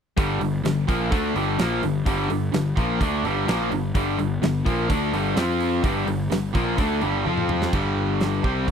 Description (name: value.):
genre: classic rock.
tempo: 127 BPM.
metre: 4/4.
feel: straight.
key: G minor.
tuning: A4 = 438 Hz.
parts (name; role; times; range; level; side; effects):
crunchy overdriven guitar; riff; 0.2-8.7 s; G2 to F4; -26 LUFS; left 12 dB; none.
overdriven electric guitar; riff; 0.2-8.7 s; G2 to F4; -26 LUFS; right 15 dB; none.
fuzz picked electric bass; bass; 0.2-8.7 s; G1 to F2; -27 LUFS; equal; overdrive.
huge arena drum kit; drums; 0.2-8.7 s; crash cymbal, hi-hat, kick drum, snare drum, toms; -27 LUFS; right 1 dB; none.
room: little or no reverb.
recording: dry, close 1970s-style studio recording.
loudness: -20 LUFS.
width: side -7 dB against mid.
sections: 0.2-7.7 A section.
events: drum fill 7.3-7.7.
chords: 0.2 Gm; 5.4 F5; 5.8 Gm; 7.3 F5; 7.7 G5.